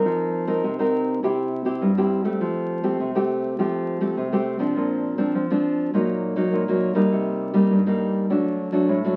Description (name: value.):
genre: samba.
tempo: 102 BPM.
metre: 4/4.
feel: straight.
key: unclear.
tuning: A4 = 438 Hz.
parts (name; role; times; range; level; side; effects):
nylon-string guitar; solo; 0.0-9.2 s; G2 to Bb4; -23 LUFS; equal; none.
room: moderate studio reverb, RT60 0.9 s.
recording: very old 78 rpm record, vinyl crackle.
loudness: -23 LUFS.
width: mono.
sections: 0.0-9.2 A section.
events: none.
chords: 0.0 F7sus4; 1.2 C; 2.4 Fadd9; 4.8 Bbadd9; 5.9 Ebm/Bb; 7.1 Cm7; 8.3 D.